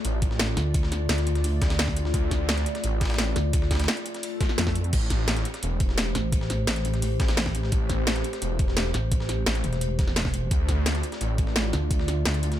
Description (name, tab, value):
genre	dark technical drum and bass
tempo	172 BPM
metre	4/4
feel	straight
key	unclear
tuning	A4 = 439 Hz
part	dark analog pad	sustained chords	0.0-12.6 s	A3 to D5	-33 LUFS	left 2 dB	chorus, phaser, sidechain pumping
part	wide detuned saw bass	bass	0.0-11.7 s	E1 to D2	-27 LUFS	equal	chorus, overdrive, sidechain pumping
part	breakbeat sampler-style drum kit	drums	0.0-12.6 s	hi-hat, snare drum	-36 LUFS	equal	high-pass filter on hats, high-pass filter on snare, high-pass filter on room
part	drum and bass drum kit	drums	0.0-12.6 s	crash cymbal, hi-hat, snare drum	-28 LUFS	equal	none
part	electronic kick drum	drums	0.2-12.0 s	none	-26 LUFS	equal	overdrive
part	pulsing pluck wobble bass	bass	0.6-12.6 s	E1 to F2	-26 LUFS	equal	chorus
part	swell	sound effects	4.3-4.9 s	none	-36 LUFS	left 3 dB	none
room	little or no reverb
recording	none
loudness	-23 LUFS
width	side -12 dB against mid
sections	0.0-12.6 A section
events	swell 4.3-4.9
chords	0.0 Dm; 4.9 Am7; 10.5 Dm